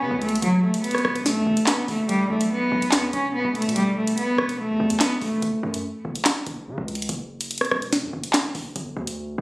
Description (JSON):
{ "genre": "hip hop, drill", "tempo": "144 BPM", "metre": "4/4", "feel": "half-time", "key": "F# phrygian", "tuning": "A4 = 440 Hz", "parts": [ { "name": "rich cello", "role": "melody", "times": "0.0-5.4 s", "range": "F#3 to C#4", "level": "-21 LUFS", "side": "equal", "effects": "low-pass filter, tape echo" }, { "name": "hard-hitting 808-style bass", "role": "bass", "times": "0.0-9.4 s", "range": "E1 to C#3", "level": "-32 LUFS", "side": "equal", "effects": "none" }, { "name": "drill drum kit", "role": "drums", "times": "0.2-9.2 s", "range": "handclaps, hi-hat, rim click, snare drum", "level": "-23 LUFS", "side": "equal", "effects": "none" } ], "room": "moderate digital room reverb, RT60 1.1 s, studio ambience", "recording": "recorded on a phone in the room, studio reverb, compression", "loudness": "-21 LUFS", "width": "side -24 dB against mid", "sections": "0.0-9.4 A section", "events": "break 5.4-9.4", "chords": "0.0 F#m; 2.1 E5; 5.4 F#5; 8.8 G5", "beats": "0.01 | 0.42 0.84 1.26 1.68 | 2.09 2.51 2.92 3.34 | 3.76 4.17 4.59 5.01 | 5.42 5.84 6.26 6.67 | 7.09 7.51 7.92 8.34 | 8.76 9.18" }